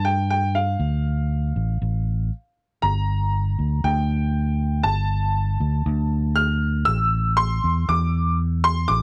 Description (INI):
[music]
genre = indie folk with a building arrangement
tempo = 119 BPM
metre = 4/4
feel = straight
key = unclear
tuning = A4 = 442 Hz
[part]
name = clear upright piano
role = melody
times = 0.0-9.0 s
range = F5 to F6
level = -26 LUFS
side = equal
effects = none
[part]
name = fingered electric bass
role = bass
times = 0.0-9.0 s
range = G1 to G2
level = -24 LUFS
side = equal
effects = none
[sound]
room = little or no reverb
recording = dry, close 1970s-style studio recording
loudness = -22 LUFS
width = mono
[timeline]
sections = 0.0-2.8 A section; 2.8-9.0 A section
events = break 2.3-2.8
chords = 0.0 N.C.; 0.8 Dm; 2.8 Gm; 6.9 Asus4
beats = 0.30 | 0.81 1.31 1.82 2.32 | 2.83 3.33 3.84 4.35 | 4.85 5.36 5.86 6.37 | 6.87 7.38 7.88 8.39 | 8.89